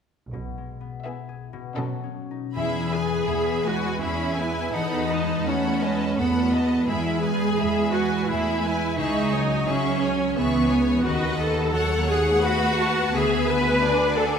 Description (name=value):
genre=classical, slow romantic movement for symphony orchestra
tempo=85 BPM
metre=3/4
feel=rubato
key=E major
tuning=A4 = 441 Hz
part: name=concert harp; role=arpeggios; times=0.3-14.4 s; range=B2 to B4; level=-30 LUFS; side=left 5 dB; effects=none
part: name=clear symphonic double bass section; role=bass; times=0.3-14.4 s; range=B1 to E2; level=-30 LUFS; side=right 2 dB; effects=none
part: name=warm studio cello section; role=bass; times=0.3-14.4 s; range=B2 to D4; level=-29 LUFS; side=right 2 dB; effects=none
part: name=clear studio violin section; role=melody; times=1.0-14.4 s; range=D#5 to C#6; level=-35 LUFS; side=left 1 dB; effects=none
part: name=bright symphonic violin section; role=second line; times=1.1-14.4 s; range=G#4 to G#5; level=-30 LUFS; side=left 3 dB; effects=none
part: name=clear symphonic viola section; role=accompaniment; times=1.1-14.4 s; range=B3 to B4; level=-24 LUFS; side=right 1 dB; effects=none
room=wet concert hall reverb, RT60 1.8 s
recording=minimal, uncompressed stereo recording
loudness=-20 LUFS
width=side -7 dB against mid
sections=0.3-2.6 A section; 2.6-14.4 B section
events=none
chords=0.3 E/B; 1.4 B9; 2.6 E; 4.7 B7/E; 6.9 E; 9.0 C#m; 11.1 B/D#; 13.1 E7/D